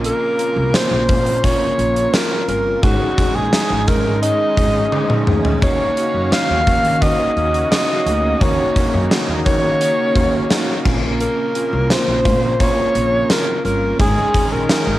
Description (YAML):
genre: 1980s-style pop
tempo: 86 BPM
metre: 4/4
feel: straight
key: Eb dorian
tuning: A4 = 440 Hz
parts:
  - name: mellow tine electric piano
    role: accompaniment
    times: 0.0-15.0 s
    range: Ab3 to Ab4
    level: -23 LUFS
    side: equal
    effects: medium stereo tremolo, cassette tape
  - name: overdriven electric guitar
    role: accompaniment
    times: 0.0-15.0 s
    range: Ab2 to Eb4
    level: -29 LUFS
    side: equal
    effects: none
  - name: brassy analog pad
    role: sustained chords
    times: 0.0-15.0 s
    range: Db3 to F5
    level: -26 LUFS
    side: right 1 dB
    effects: chorus, cassette tape
  - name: upright bass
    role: bass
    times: 0.0-15.0 s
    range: G1 to Eb3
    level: -22 LUFS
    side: equal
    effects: none
  - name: gated 80s drum kit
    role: drums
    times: 0.0-14.9 s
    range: crash cymbal, hi-hat, kick drum, snare drum, tambourine, toms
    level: -18 LUFS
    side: equal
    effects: none
  - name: breathy alto saxophone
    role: melody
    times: 0.1-15.0 s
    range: Gb4 to F5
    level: -19 LUFS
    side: equal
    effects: cassette tape
room: moderate lush hall reverb, RT60 2.2 s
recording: home recording on cassette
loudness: -14 LUFS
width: side -15 dB against mid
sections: 0.0-15.0 A section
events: drum fill 4.9-5.6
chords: 0.0 Bbmadd9; 2.8 Absus4; 5.6 Ebm7; 10.9 Bbmadd9; 14.0 Absus4